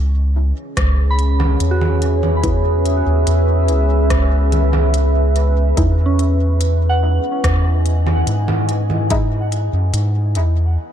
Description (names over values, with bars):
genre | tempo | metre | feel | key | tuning
ambient dub | 72 BPM | 4/4 | straight | C# minor | A4 = 440 Hz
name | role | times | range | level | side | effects
deep dark ambient pad | sustained chords | 0.5-10.8 s | C#4 to G#5 | -21 LUFS | right 1 dB | chorus, built-in reverb
round analog bass | bass | 0.0-10.8 s | C#2 to G#2 | -15 LUFS | equal | none
electronic kick drum | drums | 0.8-9.3 s | none | -22 LUFS | equal | none
organic electronic drum kit | drums | 0.8-10.5 s | congas, hi-hat, rim click | -24 LUFS | equal | dub echo
soft synth bell | arpeggios | 1.1-10.9 s | C#4 to B5 | -26 LUFS | right 3 dB | chorus, vintage 12-bit sampler grit, dub echo
filtered dub chord stab | stabs | 2.4-9.3 s | G#3 to E4 | -29 LUFS | left 1 dB | chorus, dub echo
room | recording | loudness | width
little or no reverb | none | -14 LUFS | side -9 dB against mid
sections
0.0-10.9 A section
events
break 10.8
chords
0.0 C#m7; 5.8 Emaj7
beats
0.77 1.60 | 2.44 3.27 4.11 4.94 | 5.77 6.61 7.44 8.27 | 9.11 9.94 10.77